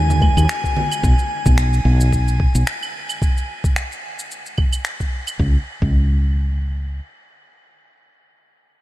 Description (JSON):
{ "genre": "sunset chillout", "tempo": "110 BPM", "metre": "4/4", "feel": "swing 56% on 16ths", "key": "unclear", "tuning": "A4 = 440 Hz", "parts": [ { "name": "woody fretless electric bass", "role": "bass", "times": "0.0-7.0 s", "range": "Cb2 to Eb2", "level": "-16 LUFS", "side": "equal", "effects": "none" }, { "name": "drifting glass-harmonics texture", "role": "texture", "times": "0.0-3.2 s", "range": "Ab5", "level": "-26 LUFS", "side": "left 2 dB", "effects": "chorus, built-in reverb" }, { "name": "electronic shaker, claves and finger snaps", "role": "drums", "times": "0.1-5.4 s", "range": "none", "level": "-28 LUFS", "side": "right 1 dB", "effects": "none" }, { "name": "congas", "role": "percussion", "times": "0.1-0.9 s", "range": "none", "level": "-28 LUFS", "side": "right 3 dB", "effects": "none" }, { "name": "electronic kick drum", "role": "drums", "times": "0.2-6.0 s", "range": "none", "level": "-18 LUFS", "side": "equal", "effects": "none" } ], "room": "light reverb", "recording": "lossy compression artefacts", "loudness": "-16 LUFS", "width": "side -16 dB against mid", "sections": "0.0-5.4 A section; 5.4-8.8 B section", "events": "none", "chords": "0.0 Ebsus4; 0.8 Abm/Cb; 3.2 N.C." }